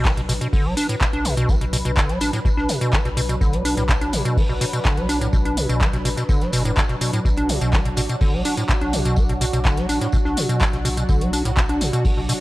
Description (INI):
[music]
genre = acid house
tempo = 125 BPM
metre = 4/4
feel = straight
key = B minor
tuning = A4 = 439 Hz
[part]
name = warm analog pad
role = sustained chords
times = 0.0-12.4 s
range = F#3 to B4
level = -28 LUFS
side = equal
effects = chorus, sidechain pumping
[part]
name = acid bass, square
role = riff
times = 0.0-12.3 s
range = A2 to D4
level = -22 LUFS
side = equal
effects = overdrive, vintage 12-bit sampler grit, tape echo
[part]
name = warm sub bass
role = bass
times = 0.0-12.3 s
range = F#1 to B1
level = -27 LUFS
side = equal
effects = sidechain pumping
[part]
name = booming analog drum machine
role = drums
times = 0.1-12.4 s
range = handclaps, hi-hat, tambourine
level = -26 LUFS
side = equal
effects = none
[part]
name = electronic kick drum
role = drums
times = 0.1-12.1 s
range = none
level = -20 LUFS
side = equal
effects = none
[part]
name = warm soul drum kit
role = drums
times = 0.1-12.4 s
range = hi-hat, snare drum, tambourine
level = -37 LUFS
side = equal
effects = none
[sound]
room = little or no reverb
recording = dry, gritty hardware recording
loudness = -18 LUFS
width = side -18 dB against mid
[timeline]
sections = 0.0-12.4 A section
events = none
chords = 0.0 Bm